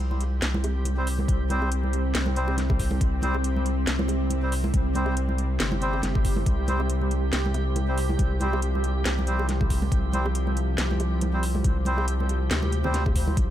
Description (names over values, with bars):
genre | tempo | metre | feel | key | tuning
deep dubstep | 139 BPM | 4/4 | swing 56% on 16ths, half-time | unclear | A4 = 440 Hz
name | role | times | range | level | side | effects
bowed-like drone | sustained chords | 0.0-13.5 s | C3 to C4 | -32 LUFS | left 1 dB | built-in reverb
saturated sub bass | bass | 0.0-13.5 s | G1 to D2 | -26 LUFS | equal | none
backwards swelling texture | texture | 0.2-13.5 s | G4 | -36 LUFS | right 3 dB | built-in reverb
congas and bongos | percussion | 0.1-13.4 s | none | -34 LUFS | right 2 dB | dub echo
garage drum kit | drums | 0.2-13.5 s | hi-hat, snare drum | -31 LUFS | equal | none
melodica | stabs | 1.0-13.0 s | G3 to C5 | -32 LUFS | equal | dub echo
electronic kick drum | drums | 1.3-13.5 s | none | -24 LUFS | equal | none
room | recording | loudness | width
light reverb | none | -22 LUFS | side -12 dB against mid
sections
0.0-13.5 A section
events
none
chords
0.0 C5